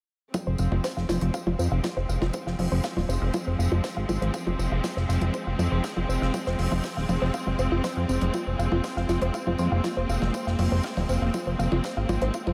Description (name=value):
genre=melodic techno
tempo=120 BPM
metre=4/4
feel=straight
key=F minor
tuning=A4 = 440 Hz
part: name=clear symphonic string section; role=sustained chords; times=0.3-12.5 s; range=F3 to C4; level=-34 LUFS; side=equal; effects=sidechain pumping
part: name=analog pluck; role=arpeggios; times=0.3-12.5 s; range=C4 to F5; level=-34 LUFS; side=equal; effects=chorus, sidechain pumping, delay
part: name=deep reggae drum kit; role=drums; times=0.3-12.5 s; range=hi-hat, snare drum, tambourine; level=-44 LUFS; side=equal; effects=sidechain pumping on hats, high-pass filter on hats, high-pass filter on snare, sidechain pumping on perc, high-pass filter on perc, high-pass filter on room
part: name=electronic kick drum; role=drums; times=0.3-12.4 s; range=none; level=-40 LUFS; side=equal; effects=high-pass filter on kick, high-pass filter on room
part: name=percussion blips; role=drums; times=0.3-12.5 s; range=none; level=-38 LUFS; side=equal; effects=none
part: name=fat analog bass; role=bass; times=0.5-12.5 s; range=Eb1 to F2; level=-28 LUFS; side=equal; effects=sidechain pumping
room=moderate huge ambient reverb, RT60 7.2 s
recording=dreamy mix soaked in reverb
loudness=-27 LUFS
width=mono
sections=0.3-12.5 A section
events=filter sweep on analog synth bass 0.3-12.5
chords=0.3 Fm; 8.3 Abadd9